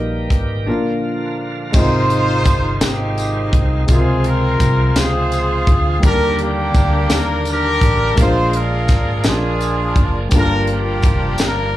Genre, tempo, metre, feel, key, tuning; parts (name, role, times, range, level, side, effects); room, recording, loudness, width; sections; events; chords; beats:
slow gospel; 56 BPM (dotted quarters); 6/8; straight; Eb major; A4 = 439 Hz
warm concert grand piano; accompaniment; 0.0-11.8 s; G2 to C5; -22 LUFS; left 1 dB
bright tonewheel organ; sustained chords; 0.0-11.8 s; D3 to Ab4; -26 LUFS; right 4 dB; slow rotary speaker, overdrive
fingered electric bass; bass; 0.0-11.8 s; F1 to Eb2; -19 LUFS; equal
tight funk drum kit; drums; 0.3-11.6 s; crash cymbal, hi-hat, kick drum, rim click, snare drum; -16 LUFS; equal
clear horn section; melody; 1.7-11.8 s; Bb3 to C5; -19 LUFS; equal; slapback echo
tambourine; percussion; 1.7-11.7 s; -32 LUFS; left 2 dB
light reverb; live gig heard through the venue's PA, club reverb; -14 LUFS; side -14 dB against mid
0.0-1.7 A section; 1.7-11.8 B section
0.0 Eb/Bb; 0.7 Bb; 1.7 Ab6; 3.9 Dbmaj7; 6.0 Ebmaj7; 8.2 Bb7; 10.3 Gm7
0.67 | 1.74 2.81 | 3.89 4.96 | 6.04 7.11 | 8.18 9.25 | 10.33 11.40